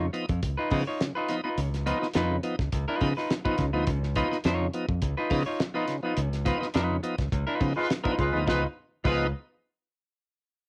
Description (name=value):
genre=funk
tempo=104 BPM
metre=4/4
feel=straight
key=Db mixolydian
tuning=A4 = 442 Hz
part: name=semi-hollow electric guitar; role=accompaniment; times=0.0-9.2 s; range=Eb4 to Db5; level=-32 LUFS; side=equal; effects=cassette tape
part: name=bright tonewheel organ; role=stabs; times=0.0-9.3 s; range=Db3 to Eb4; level=-34 LUFS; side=equal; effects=overdrive, slow rotary speaker, cassette tape
part: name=modern bright fingered electric bass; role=bass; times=0.0-9.3 s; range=Db2 to Db3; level=-31 LUFS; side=equal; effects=none
part: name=cloth-damped thuddy drum kit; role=drums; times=0.1-9.2 s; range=crash cymbal, hi-hat, kick drum, snare drum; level=-33 LUFS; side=equal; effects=none
part: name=clear horn section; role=second line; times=7.8-9.3 s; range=Ab3 to Cb5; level=-31 LUFS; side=equal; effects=cassette tape
room=light reverb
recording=home recording on cassette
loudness=-28 LUFS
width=mono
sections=0.0-8.5 A section; 8.5-10.7 B section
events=band accent 6.2-8.5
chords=0.0 Db9